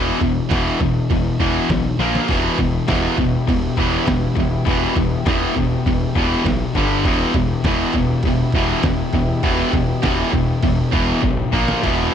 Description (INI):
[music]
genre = heavy metal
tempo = 101 BPM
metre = 4/4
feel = straight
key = E minor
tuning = A4 = 440 Hz
[part]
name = distorted electric guitar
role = riff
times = 0.0-12.1 s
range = E2 to A#3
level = -22 LUFS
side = right 12 dB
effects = overdrive
[part]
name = high-gain distorted guitar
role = riff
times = 0.0-12.1 s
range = E2 to A#3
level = -20 LUFS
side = left 8 dB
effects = distortion
[part]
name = fuzz picked electric bass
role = bass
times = 0.0-12.1 s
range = E1 to B1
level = -24 LUFS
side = equal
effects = overdrive
[part]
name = lo-fi sampler-style drum kit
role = drums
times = 0.2-12.0 s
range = crash cymbal, kick drum, snare drum, splash cymbal, toms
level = -23 LUFS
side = right 1 dB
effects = none
[part]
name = rich chamber string section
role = sustained chords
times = 2.3-11.8 s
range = E3 to G4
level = -30 LUFS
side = left 1 dB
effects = none
[sound]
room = digital ambience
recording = dark, warm production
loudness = -16 LUFS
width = side -8 dB against mid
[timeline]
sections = 0.0-11.8 A section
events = drum fill 2.0, 11.2-11.8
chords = 0.0 E5; 2.0 A#5; 2.3 Em; 6.8 G5; 7.1 Em; 11.5 A#5